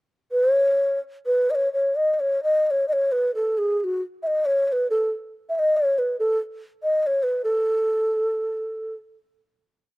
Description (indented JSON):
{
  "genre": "indian classical",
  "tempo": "127-164 BPM",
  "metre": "4/4",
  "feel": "straight",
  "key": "A raga yaman",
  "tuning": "A4 = 440 Hz",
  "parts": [
    { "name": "mellow hollow bass bansuri", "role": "solo", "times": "0.3-8.9 s", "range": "F#4 to E5", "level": "-20 LUFS", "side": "equal", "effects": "none" }
  ],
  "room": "little or no reverb",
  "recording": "recorded outdoors, with no room sound",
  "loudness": "-20 LUFS",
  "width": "side -21 dB against mid",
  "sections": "0.3-7.4 theme; 7.4-10.0 final note",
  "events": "speeding up 0.3-10.0",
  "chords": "none"
}